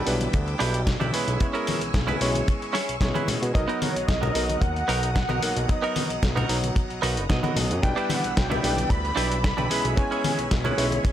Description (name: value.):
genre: nu-disco, nu disco.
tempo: 112 BPM.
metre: 4/4.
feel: straight.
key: B major.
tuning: A4 = 440 Hz.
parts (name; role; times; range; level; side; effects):
warm electric grand piano; accompaniment; 0.0-11.1 s; F#3 to C#5; -30 LUFS; equal; sidechain pumping, ping-pong delay.
string machine, full ensemble; sustained chords; 0.0-11.1 s; C#5 to E6; -35 LUFS; equal; phaser, ensemble chorus, vintage 12-bit sampler grit, sidechain pumping.
direct-recorded clean electric guitar; riff; 0.0-11.1 s; B3 to D#5; -29 LUFS; right 4 dB; lush chorus, ping-pong delay.
fat analog bass; bass; 0.1-11.0 s; F#1 to B2; -28 LUFS; equal; none.
dusty soul sampler-style drum kit; drums; 0.1-11.1 s; hi-hat, snare drum; -31 LUFS; left 1 dB; overdrive.
congas; percussion; 0.2-11.0 s; none; -31 LUFS; left 3 dB; none.
kick drum; drums; 0.3-11.1 s; none; -24 LUFS; equal; none.
wide unison lead; melody; 3.5-10.5 s; C#5 to B5; -30 LUFS; equal; dub echo.
room: studio ambience.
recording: none.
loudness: -22 LUFS.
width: side -11 dB against mid.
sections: 0.0-11.1 A section.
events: clean electric guitar fill 6.8-7.8.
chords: 0.0 G6/B; 1.1 E6/B; 3.5 Bmaj7; 7.8 G6/B; 9.7 E6/B.